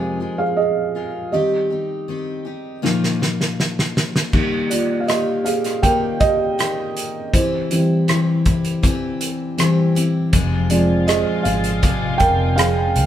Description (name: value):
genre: pop ballad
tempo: 80 BPM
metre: 4/4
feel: straight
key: Eb major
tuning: A4 = 441 Hz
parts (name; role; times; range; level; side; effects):
- felt-muted upright piano; accompaniment; 0.0-13.1 s; Bb2 to G5; -19 LUFS; right 1 dB; none
- picked steel-string acoustic guitar; arpeggios; 0.0-13.1 s; F2 to Ab4; -26 LUFS; left 5 dB; none
- loose indie drum kit; drums; 2.9-13.1 s; crash cymbal, hi-hat, kick drum, rim click, snare drum; -21 LUFS; equal; none
- warm studio string section; sustained chords; 10.3-13.1 s; C3 to F4; -27 LUFS; left 1 dB; none
- vintage muted fingered electric bass; bass; 10.3-13.1 s; F1 to D2; -21 LUFS; equal; none
room: moderate stone room reverb, RT60 1.3 s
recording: band playing live in one room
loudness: -16 LUFS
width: side -11 dB against mid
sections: 0.0-4.3 A section; 4.3-13.1 B section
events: felt piano solo 0.0-4.3, 4.3-13.1; drum fill 2.8-4.3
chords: 0.0 Fm; 1.3 Cm/Eb; 2.8 Bbsus4; 4.3 Eb; 7.3 C/E; 10.3 Fm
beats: 0.58 | 1.33 2.08 2.83 3.58 | 4.33 5.08 5.83 6.58 | 7.33 8.08 8.83 9.58 | 10.33 11.08 11.83 12.58